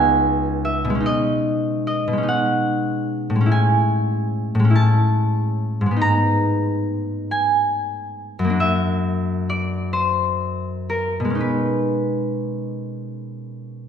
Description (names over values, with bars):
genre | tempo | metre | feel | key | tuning
classical, solo harp piece | 40-49 BPM (dotted quarters) | 6/8 | rubato | unclear | A4 = 438 Hz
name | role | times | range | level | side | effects
concert harp | solo | 0.0-13.9 s | C#2 to A#5 | -18 LUFS | equal | none
room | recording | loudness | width
wet recital hall reverb, RT60 1.4 s | heard from further back in the room | -18 LUFS | side -8 dB against mid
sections
0.0-13.9 A section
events
none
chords
0.0 C#m9; 1.0 B69; 3.5 Amaj7; 6.0 G#madd9; 8.6 F#aug7; 11.4 B69